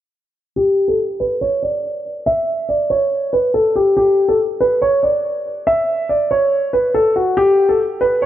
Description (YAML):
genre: hip hop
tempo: 141 BPM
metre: 4/4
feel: half-time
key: unclear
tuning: A4 = 440 Hz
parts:
  - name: dark concert grand piano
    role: melody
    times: 0.6-8.3 s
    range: F#4 to E5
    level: -14 LUFS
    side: equal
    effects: low-pass filter, digital delay
room: moderate lush hall reverb, RT60 2.2 s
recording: none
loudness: -14 LUFS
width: side -12 dB against mid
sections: 0.6-8.3 A section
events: filter sweep on grand piano 0.6-8.3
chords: none